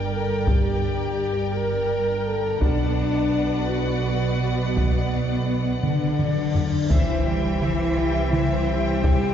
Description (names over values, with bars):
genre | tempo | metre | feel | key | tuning
cinematic, epic orchestral film score | 56 BPM (dotted quarters) | 6/8 | straight | unclear | A4 = 444 Hz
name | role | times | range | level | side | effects
clear studio violin section | melody | 0.0-9.3 s | E5 to G5 | -34 LUFS | left 4 dB | none
rich symphonic violin section | second line | 0.0-9.3 s | Bb4 to E5 | -33 LUFS | left 3 dB | none
rich studio viola section | accompaniment | 0.0-9.3 s | E3 to Bb4 | -32 LUFS | equal | none
warm French horn section | sustained chords | 0.0-9.3 s | B3 to Bb4 | -27 LUFS | left 2 dB | none
rich studio cello section | bass | 0.0-9.3 s | G2 to G3 | -27 LUFS | right 2 dB | none
rich symphonic double bass section | bass | 0.0-9.3 s | G1 to C2 | -28 LUFS | right 2 dB | none
taiko ensemble | drums | 0.5-9.3 s | none | -24 LUFS | equal | none
cymbal swell and impact | sound effects | 6.3-9.0 s | none | -36 LUFS | equal | none
small flute group | second line | 5.8-9.3 s | D5 to G5 | -32 LUFS | left 4 dB | none
rich symphonic string section | sustained chords | 6.9-9.3 s | G3 to G5 | -33 LUFS | left 1 dB | none
room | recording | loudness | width
wet concert hall reverb, RT60 1.9 s | heard from further back in the room, nothing above 7.6 kHz | -20 LUFS | side -9 dB against mid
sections
0.0-6.9 A section; 6.9-9.3 B section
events
drum fill 5.8-6.9; cymbal swell 6.3-6.9; impact 6.9-9.0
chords
0.0 Gm; 2.6 Bm; 6.9 C